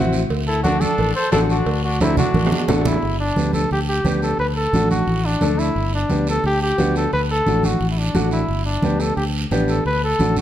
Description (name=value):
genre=latin, cumbia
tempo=176 BPM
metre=4/4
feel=straight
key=G major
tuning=A4 = 439 Hz
part: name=warm upright piano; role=accompaniment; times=0.0-10.4 s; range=A3 to A4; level=-24 LUFS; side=left 1 dB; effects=none
part: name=fingered electric bass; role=bass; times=0.0-10.4 s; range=G1 to D2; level=-21 LUFS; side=left 1 dB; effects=none
part: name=guiro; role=percussion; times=0.1-10.4 s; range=none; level=-33 LUFS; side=right 5 dB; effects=none
part: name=cowbell and timbales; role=percussion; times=0.3-3.0 s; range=none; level=-28 LUFS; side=right 5 dB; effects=none
part: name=warm flugelhorn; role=melody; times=0.5-10.4 s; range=D4 to C5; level=-22 LUFS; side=equal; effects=none
part: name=bright trumpet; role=second line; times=0.5-2.7 s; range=C4 to A4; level=-29 LUFS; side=left 4 dB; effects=none
part: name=congas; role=percussion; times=0.6-10.4 s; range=none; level=-24 LUFS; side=right 2 dB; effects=none
room=moderate large studio reverb, RT60 1.3 s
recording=dark, warm production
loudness=-17 LUFS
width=side -11 dB against mid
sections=0.0-3.0 A section; 3.0-10.4 B section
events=drum fill 2.0-3.0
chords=0.3 D; 3.0 G; 4.4 D; 5.8 G; 7.1 D; 8.5 G; 9.9 D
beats=| 0.30 0.64 0.98 1.33 | 1.67 2.01 2.35 2.69 | 3.03 3.37 3.71 4.05 | 4.39 4.74 5.08 5.42 | 5.76 6.10 6.44 6.78 | 7.12 7.47 7.81 8.15 | 8.49 8.83 9.17 9.51 | 9.85 10.20